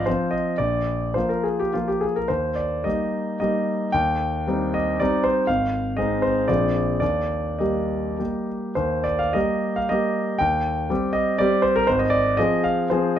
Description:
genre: classical, romantic triple-time dance for piano with dotted rhythms.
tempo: 96-131 BPM.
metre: 3/4.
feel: rubato.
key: Eb major.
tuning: A4 = 438 Hz.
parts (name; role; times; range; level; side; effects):
clear concert grand piano; solo; 0.0-13.2 s; Ab1 to G5; -20 LUFS; equal; none.
room: moderate large studio reverb, RT60 0.9 s.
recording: none.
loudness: -20 LUFS.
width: side -10 dB against mid.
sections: 0.0-8.8 A section; 8.8-13.2 A section.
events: none.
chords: 0.0 Fm/Ab; 0.6 Bb; 2.3 Eb; 3.9 Cm/Eb; 5.5 Fm7/Ab; 6.5 Bb9; 7.0 Eb; 10.4 Cm/Eb; 11.9 Fm/Ab.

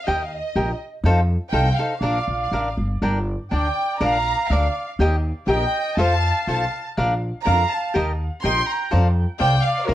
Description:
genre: mexican folk, mariachi.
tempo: 122 BPM.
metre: 2/4.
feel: rubato.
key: Bb major.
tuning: A4 = 441 Hz.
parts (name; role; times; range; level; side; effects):
warm studio violin section; melody; 0.0-9.9 s; Bb4 to C6; -24 LUFS; right 1 dB; none.
cavaquinho; accompaniment; 0.1-9.9 s; D4 to G5; -23 LUFS; left 1 dB; none.
upright bass; bass; 0.1-9.9 s; G1 to F2; -21 LUFS; equal; none.
bright trumpet; second line; 2.0-9.9 s; F4 to G5; -28 LUFS; right 1 dB; tape echo.
room: moderate studio reverb, RT60 0.6 s.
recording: worn, warbling old tape, cassette tape, warbly pitch drift.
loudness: -19 LUFS.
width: side -13 dB against mid.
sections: 0.0-9.9 A section.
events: none.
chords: 0.1 Eb; 1.0 F7; 2.0 Bb; 3.0 Gm; 4.0 Bb; 5.0 Eb; 6.0 F; 7.0 Bb; 8.0 Eb; 8.9 F6.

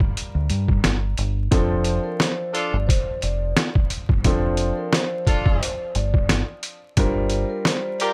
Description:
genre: hip hop, boom-bap hip-hop.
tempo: 88 BPM.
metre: 4/4.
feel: swing 55% on 16ths.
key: unclear.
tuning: A4 = 440 Hz.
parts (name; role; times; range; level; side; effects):
dark upright piano; accompaniment; 0.0-8.1 s; F3 to Bb4; -31 LUFS; equal; cassette tape, high-pass filter, low-pass filter, plate reverb.
deep dub fingered electric bass; bass; 0.0-7.4 s; F1 to G2; -26 LUFS; equal; none.
trip hop sampler-style drum kit; drums; 0.0-8.1 s; hi-hat, kick drum, snare drum; -23 LUFS; equal; none.
vibraphone with soft mallets; melody; 1.5-8.1 s; Bb4 to D5; -31 LUFS; equal; high-pass filter, low-pass filter, tape echo.
warm horn section; stabs; 2.5-8.1 s; D4 to Bb4; -28 LUFS; equal; high-pass filter, low-pass filter.
room: light reverb.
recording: vinyl crackle.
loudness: -22 LUFS.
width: mono.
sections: 0.0-1.5 A section; 1.5-8.1 B section.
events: none.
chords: 0.0 Gm7; 1.5 F6; 7.0 Gm7.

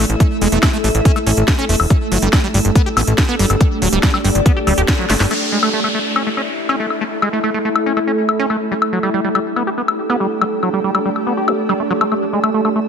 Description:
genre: psychedelic trance.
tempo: 141 BPM.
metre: 4/4.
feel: straight.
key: unclear.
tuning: A4 = 435 Hz.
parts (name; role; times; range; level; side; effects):
swarming drone; sustained chords; 0.0-12.9 s; A3 to A4; -22 LUFS; right 2 dB; built-in reverb, sidechain pumping.
liquid acid bass; riff; 0.0-12.8 s; F#3 to G4; -20 LUFS; moving between left 2 dB and right 4 dB; chorus, auto-pan, sidechain pumping, digital delay.
plucky analog bass; bass; 0.0-5.3 s; D1 to A1; -16 LUFS; equal; tube saturation.
ethereal airy pad; texture; 0.0-12.9 s; D4 to E5; -22 LUFS; left 2 dB; ensemble chorus, built-in reverb, sidechain pumping.
techno drum kit; drums; 0.1-12.7 s; crash cymbal, hi-hat, snare drum, woodblock; -20 LUFS; left 3 dB; none.
electronic kick drum; drums; 0.2-5.0 s; none; -14 LUFS; equal; none.
downlifter; sound effects; 5.3-8.7 s; none; -24 LUFS; equal; none.
room: moderate lush hall reverb, RT60 2.0 s.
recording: none.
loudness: -14 LUFS.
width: side -7 dB against mid.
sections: 0.0-5.3 A section; 5.3-12.9 B section.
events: band accent 4.9; drum fill 5.1; filter sweep on acid bass 5.3-12.9.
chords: 0.0 A5; 1.9 G5; 5.3 A5; 8.7 G5; 12.1 A5.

